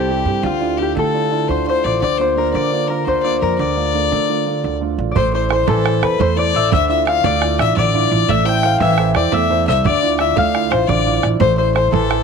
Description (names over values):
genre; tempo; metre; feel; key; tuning
celtic folk, Celtic slip jig; 115 BPM (dotted quarters); 9/8; straight; D minor, A minor from 5.2 s; A4 = 440 Hz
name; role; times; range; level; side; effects
Celtic harp; melody; 0.0-12.2 s; F4 to G5; -19 LUFS; left 4 dB; none
clear fiddle; second line; 0.0-12.2 s; F4 to G5; -20 LUFS; left 13 dB; none
warm upright piano; accompaniment; 0.0-12.2 s; C3 to C5; -21 LUFS; right 15 dB; none
upright bass; bass; 0.0-12.2 s; A1 to D3; -21 LUFS; right 2 dB; none
bodhran; percussion; 5.2-12.2 s; none; -21 LUFS; right 10 dB; none
room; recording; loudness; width
small room ambience; 1960s-style stereo with parts hard left and right; -14 LUFS; side -6 dB against mid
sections
0.0-5.2 A section; 5.2-12.2 B section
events
none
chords
0.4 Dmadd9; 2.0 Bb/D; 3.6 Dm; 5.2 Am; 6.7 Dmadd9; 8.3 Am; 9.8 Dmadd9; 11.4 Am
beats
| 0.44 0.96 1.49 | 2.01 2.54 3.06 | 3.58 4.11 4.63 | 5.15 5.68 6.20 | 6.72 7.24 7.76 | 8.28 8.80 9.32 | 9.85 10.37 10.89 | 11.41 11.93